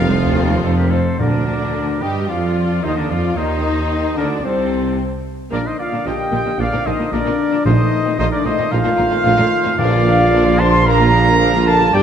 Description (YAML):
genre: classical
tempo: 112 BPM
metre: 4/4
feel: rubato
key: Bb major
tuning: A4 = 441 Hz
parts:
  - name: rich symphonic violin section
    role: melody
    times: 0.0-12.0 s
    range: C4 to F5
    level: -30 LUFS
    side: left 7 dB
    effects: none
  - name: clear clarinet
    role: second line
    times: 0.0-12.0 s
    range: F4 to C6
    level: -28 LUFS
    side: left 1 dB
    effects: none
  - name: clear oboe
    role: second line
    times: 0.0-12.0 s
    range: F4 to A5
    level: -25 LUFS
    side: equal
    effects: none
  - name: mellow hollow concert flute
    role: second line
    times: 0.0-12.0 s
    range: Bb4 to C6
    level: -28 LUFS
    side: left 4 dB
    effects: none
  - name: warm symphonic violin section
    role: second line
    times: 0.0-12.0 s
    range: Bb3 to G4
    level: -30 LUFS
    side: left 4 dB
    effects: none
  - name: warm studio viola section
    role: accompaniment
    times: 0.0-12.0 s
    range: F3 to G4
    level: -26 LUFS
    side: equal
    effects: none
  - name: clear trombone section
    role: sustained chords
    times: 0.0-12.0 s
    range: C3 to Bb3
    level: -27 LUFS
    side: right 4 dB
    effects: none
  - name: mellow French horn section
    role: sustained chords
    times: 0.0-12.0 s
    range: Bb3 to C5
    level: -23 LUFS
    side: left 4 dB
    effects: none
  - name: mellow trumpet section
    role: stabs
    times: 0.0-12.0 s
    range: Bb4 to C6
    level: -22 LUFS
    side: right 2 dB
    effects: none
  - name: mellow tuba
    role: bass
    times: 0.0-12.0 s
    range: F1 to G2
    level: -22 LUFS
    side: right 3 dB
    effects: none
  - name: rich symphonic cello section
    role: bass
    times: 0.0-12.0 s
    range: C2 to G3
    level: -23 LUFS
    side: right 2 dB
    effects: none
  - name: warm studio double bass section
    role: bass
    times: 0.0-12.0 s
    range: F1 to G2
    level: -24 LUFS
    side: right 2 dB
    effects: none
  - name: timpani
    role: percussion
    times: 1.2-2.0, 7.7-10.6 s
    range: Bb2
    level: -21 LUFS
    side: equal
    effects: none
room: moderate scoring stage reverb, RT60 2.0 s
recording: none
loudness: -14 LUFS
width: side -8 dB against mid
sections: 0.0-1.2 A section; 1.2-12.0 B section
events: none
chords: 0.1 F; 1.2 Bb/D; 3.4 Cm69; 5.5 Bb; 7.7 F7/Bb; 9.8 Bb